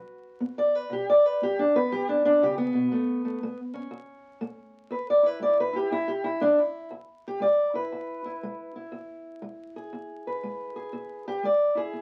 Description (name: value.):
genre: acoustic country blues, solo or duo.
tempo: 120 BPM.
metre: 4/4.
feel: swing 64% on 8ths.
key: E major.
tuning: A4 = 440 Hz.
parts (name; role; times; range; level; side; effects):
fingerpicked steel-string acoustic guitar; solo; 0.0-12.0 s; E2 to D5; -27 LUFS; equal; none.
room: moderate small room reverb, RT60 0.5 s.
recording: very old 78 rpm record, vinyl crackle.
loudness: -25 LUFS.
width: mono.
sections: 0.0-6.9 A section; 6.9-12.0 A section.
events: steel-string acoustic guitar solo 0.0-6.9, 6.9-12.0.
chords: 0.0 B5; 2.9 A; 4.9 E.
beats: 0.42 | 0.93 1.43 1.93 2.43 | 2.93 3.43 3.93 4.43 | 4.93 5.43 5.92 6.42 | 6.92 7.42 7.92 8.43 | 8.93 9.43 9.93 10.43 | 10.93 11.43 11.93.